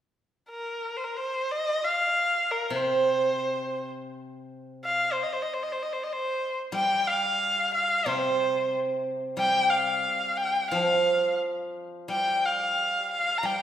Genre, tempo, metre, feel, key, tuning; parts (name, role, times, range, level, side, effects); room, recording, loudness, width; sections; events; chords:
chinese traditional, Chinese chamber ensemble; 69-91 BPM; 2/4; rubato; C yu mode; A4 = 440 Hz
clear erhu; melody; 0.5-13.6 s; Bb4 to Bb5; -25 LUFS; left 1 dB
steel-string zither; accompaniment; 2.7-13.6 s; C3 to G3; -28 LUFS; right 2 dB
wet recital hall reverb, RT60 1.4 s; recorded in a church or concert hall; -24 LUFS; side -10 dB against mid
0.1-6.7 A section; 6.7-13.6 B section